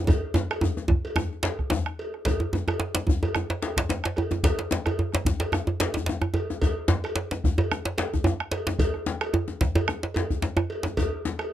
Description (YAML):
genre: west african traditional, West African drum ensemble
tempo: 110 BPM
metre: 4/4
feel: swing 54% on 16ths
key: none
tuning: none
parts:
  - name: bombo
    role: percussion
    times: 0.1-11.5 s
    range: none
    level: -26 LUFS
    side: right 1 dB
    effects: none
  - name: cowbell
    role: percussion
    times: 0.1-11.5 s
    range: none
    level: -33 LUFS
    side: right 1 dB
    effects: none
  - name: djembe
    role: percussion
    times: 0.1-11.4 s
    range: none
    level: -30 LUFS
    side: left 4 dB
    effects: none
  - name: djembe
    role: percussion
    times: 0.1-11.0 s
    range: none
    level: -26 LUFS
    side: right 2 dB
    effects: none
room: little or no reverb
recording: close, detailed microphones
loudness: -24 LUFS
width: side -12 dB against mid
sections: 0.0-2.3 A section; 2.3-11.5 B section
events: drum fill 0.1-2.3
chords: none